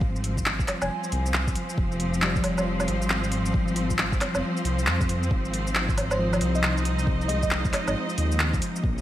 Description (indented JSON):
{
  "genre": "future garage",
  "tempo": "136 BPM",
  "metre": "4/4",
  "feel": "swing 63% on 16ths",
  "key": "unclear",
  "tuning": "A4 = 439 Hz",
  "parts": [
    { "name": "overdriven tine electric piano", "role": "accompaniment", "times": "0.0-8.9 s", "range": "F3 to Ab3", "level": "-32 LUFS", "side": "left 1 dB", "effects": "sidechain pumping, ping-pong delay" },
    { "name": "clear studio string section", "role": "sustained chords", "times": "0.0-9.0 s", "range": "F3 to Eb5", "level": "-30 LUFS", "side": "equal", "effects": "sidechain pumping" },
    { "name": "dark detuned saw bass", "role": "bass", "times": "0.0-9.0 s", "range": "F1 to F2", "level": "-28 LUFS", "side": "equal", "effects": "tube saturation, sidechain pumping" },
    { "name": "electronic kick drum", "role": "drums", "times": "0.0-8.9 s", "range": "none", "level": "-27 LUFS", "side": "equal", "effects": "studio reverb" },
    { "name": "deep house drum kit", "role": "drums", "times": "0.2-9.0 s", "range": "handclaps, hi-hat, shaker, woodblock", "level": "-28 LUFS", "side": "equal", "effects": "studio reverb, gated reverb" },
    { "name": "bell-like FM electric piano", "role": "melody", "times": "0.8-1.3, 6.1-7.5 s", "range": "C5 to Ab5", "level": "-34 LUFS", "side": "right 1 dB", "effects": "chorus, digital delay" }
  ],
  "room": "moderate lush hall reverb, RT60 1.7 s, digital ambience",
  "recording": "bright 1980s-style digital production, vinyl crackle",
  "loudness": "-22 LUFS",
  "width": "side -13 dB against mid",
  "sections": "0.0-9.0 A section",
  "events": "none",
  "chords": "0.0 Fm; 5.3 Ab",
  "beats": "| 0.02 0.46 0.90 1.34 | 1.78 2.22 2.66 3.10 | 3.55 3.99 4.43 4.87 | 5.31 5.75 6.19 6.63 | 7.08 7.52 7.96 8.40 | 8.84"
}